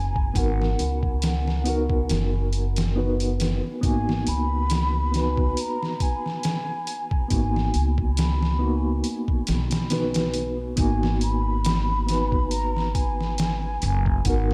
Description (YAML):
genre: trip hop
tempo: 69 BPM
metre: 4/4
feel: swing 55% on 16ths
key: G# minor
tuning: A4 = 440 Hz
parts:
  - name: mellow hollow wooden flute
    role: melody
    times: 0.0-14.5 s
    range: F#5 to B5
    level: -33 LUFS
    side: equal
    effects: dub echo
  - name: reed electric piano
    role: accompaniment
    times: 0.0-14.5 s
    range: A#3 to B4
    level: -30 LUFS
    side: equal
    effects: tremolo, tape echo
  - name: upright bass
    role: bass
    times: 0.0-14.5 s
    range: F#1 to C#2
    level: -27 LUFS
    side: equal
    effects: none
  - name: trip hop sampler-style drum kit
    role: drums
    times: 0.2-14.5 s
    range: hi-hat, kick drum, snare drum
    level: -29 LUFS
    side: equal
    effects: none
room: light reverb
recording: none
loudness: -24 LUFS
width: mono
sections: 0.0-14.5 A section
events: none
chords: 0.0 G#m7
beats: | 0.35 1.22 2.09 2.96 | 3.83 4.70 5.56 6.43 | 7.30 8.17 9.04 9.91 | 10.78 11.65 12.52 13.39 | 14.26